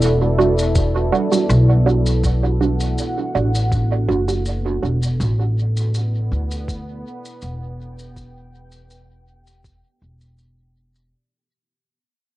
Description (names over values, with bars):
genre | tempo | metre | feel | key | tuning
ambient dub | 81 BPM | 4/4 | straight | unclear | A4 = 439 Hz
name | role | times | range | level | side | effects
deep dark ambient pad | sustained chords | 0.0-11.1 s | B3 to G5 | -25 LUFS | left 1 dB | chorus, built-in reverb, cassette tape
upright bass | bass | 0.0-11.1 s | E1 to D2 | -18 LUFS | equal | none
shaker | drums | 0.0-11.1 s | none | -33 LUFS | left 2 dB | cassette tape, dub echo
filtered dub chord stab | stabs | 0.4-5.0 s | G3 to F#4 | -22 LUFS | right 5 dB | phaser, cassette tape, dub echo
electronic kick drum | drums | 0.8-9.8 s | none | -22 LUFS | equal | cassette tape
room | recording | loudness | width
moderate booth ambience, RT60 0.2 s | home recording on cassette | -16 LUFS | side -16 dB against mid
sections
0.0-11.1 A section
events
fade-out 0.0-11.1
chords
0.0 Em9; 5.2 A5